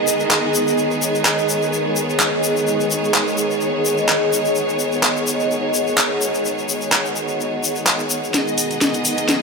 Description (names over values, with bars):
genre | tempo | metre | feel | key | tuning
bass house | 127 BPM | 4/4 | swing 55% on 16ths | G# minor | A4 = 440 Hz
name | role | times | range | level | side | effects
clear symphonic string section | sustained chords | 0.0-9.4 s | D#3 to D#5 | -22 LUFS | equal | vintage 12-bit sampler grit
granular cloud pad | texture | 0.0-9.4 s | G#4 to G#5 | -21 LUFS | right 1 dB | built-in reverb
egg shaker | percussion | 0.1-9.4 s | none | -25 LUFS | left 5 dB | none
garage drum kit | drums | 0.3-9.4 s | handclaps, hi-hat, snare drum | -19 LUFS | equal | overdrive
riser | sound effects | 8.5-9.4 s | none | -37 LUFS | right 1 dB | none
room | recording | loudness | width
moderate lush hall reverb, RT60 2.3 s | none | -16 LUFS | side -4 dB against mid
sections
0.0-8.3 A section; 8.3-9.4 B section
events
build-up 8.3-9.4; drum fill 8.3-9.4; riser 8.5-9.4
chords
0.0 G#m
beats
0.31 | 0.78 1.25 1.73 2.20 | 2.67 3.14 3.62 4.09 | 4.56 5.03 5.51 5.98 | 6.45 6.92 7.40 7.87 | 8.34 8.81 9.29